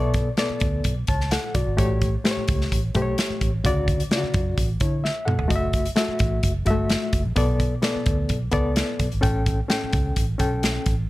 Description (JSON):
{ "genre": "uptempo 1960s-style soul", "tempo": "129 BPM", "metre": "4/4", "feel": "straight", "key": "unclear", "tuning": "A4 = 435 Hz", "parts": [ { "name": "barky reed electric piano", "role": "accompaniment", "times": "0.0-10.9 s", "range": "A2 to C#6", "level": "-26 LUFS", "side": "left 2 dB", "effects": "overdrive, fast tremolo" }, { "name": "vintage muted fingered electric bass", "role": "bass", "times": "0.0-11.1 s", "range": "F1 to D3", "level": "-25 LUFS", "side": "equal", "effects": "none" }, { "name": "natural country drum kit", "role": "drums", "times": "0.1-11.0 s", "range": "hi-hat, kick drum, snare drum, toms", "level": "-24 LUFS", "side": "equal", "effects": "none" } ], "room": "studio reverb", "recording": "none", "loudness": "-20 LUFS", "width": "side -18 dB against mid", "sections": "0.0-11.1 A section", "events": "drum fill 5.0-5.5", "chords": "0.0 Bm7; 1.8 A7; 3.6 Dmaj7; 5.5 F#m7; 7.4 Bm7; 9.2 A7" }